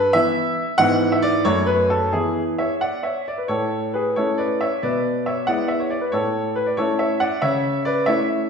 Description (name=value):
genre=classical-period piano sonatina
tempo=92 BPM (dotted quarters)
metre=6/8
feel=straight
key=A major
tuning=A4 = 440 Hz
part: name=clear concert grand piano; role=solo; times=0.0-8.5 s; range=F#2 to F#5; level=-18 LUFS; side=equal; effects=none
room=wet recital hall reverb, RT60 1.4 s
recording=heard from further back in the room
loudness=-18 LUFS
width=side -6 dB against mid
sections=0.0-3.5 A section; 3.5-8.5 B section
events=none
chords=0.0 Em/G; 0.8 E/G#; 1.5 F#m; 2.1 E; 3.5 A; 4.8 E7/B; 6.1 A; 7.4 A/C#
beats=0.15 | 0.80 1.46 | 2.14 2.82 | 3.51 4.17 | 4.83 5.49 | 6.13 6.79 | 7.43 8.08